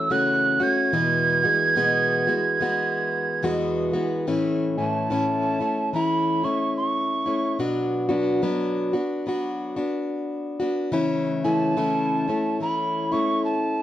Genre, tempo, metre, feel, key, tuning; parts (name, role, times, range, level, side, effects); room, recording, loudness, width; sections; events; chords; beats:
acoustic folk duo or small band; 72 BPM; 4/4; swing 61% on 8ths; A major; A4 = 437 Hz
mellow hollow tin whistle; melody; 0.0-13.8 s; A5 to G#6; -23 LUFS; right 3 dB; slapback echo
picked plugged-in steel-string acoustic guitar; accompaniment; 0.0-13.8 s; E2 to F#4; -23 LUFS; left 1 dB
moderate studio reverb, RT60 0.5 s; worn, warbling old tape, cassette tape, warbly pitch drift; -21 LUFS; side -12 dB against mid
0.0-4.3 A section; 4.3-13.8 B section
tin whistle solo 4.3-13.8
0.0 A6/C#; 0.9 Eadd9; 4.3 A; 7.6 Bm; 10.9 A/C#
0.10 | 0.94 1.77 2.60 3.43 | 4.27 5.10 5.93 6.77 | 7.60 8.43 9.27 10.10 | 10.94 11.77 12.61 13.44